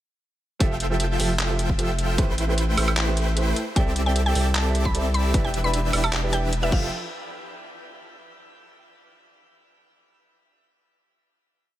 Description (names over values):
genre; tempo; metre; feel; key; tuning
future bass; 152 BPM; 4/4; half-time; F lydian; A4 = 440 Hz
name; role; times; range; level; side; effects
warm grand piano; accompaniment; 0.6-6.9 s; C3 to E5; -31 LUFS; right 3 dB; sidechain pumping, tape echo
supersaw chords; riff; 0.6-6.9 s; E3 to G5; -29 LUFS; equal; sidechain pumping
saturated sub bass; bass; 0.6-6.9 s; E1 to C2; -24 LUFS; equal; sidechain pumping
electronic kick drum; drums; 0.6-6.8 s; none; -23 LUFS; equal; none
pop drum kit; drums; 0.6-6.8 s; crash cymbal, handclaps, hi-hat, woodblock; -29 LUFS; right 1 dB; none
mallet-like synth pluck; melody; 3.8-6.9 s; E5 to B5; -30 LUFS; equal; chorus, sidechain pumping, tape echo
room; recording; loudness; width
light reverb; none; -20 LUFS; side -13 dB against mid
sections
0.6-6.9 drop; 6.9-8.5 final hit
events
drop 0.6-6.9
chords
0.6 Fmaj9; 2.2 Am9; 3.6 C6; 5.3 Em7; 6.7 Fmaj9; 6.9 N.C.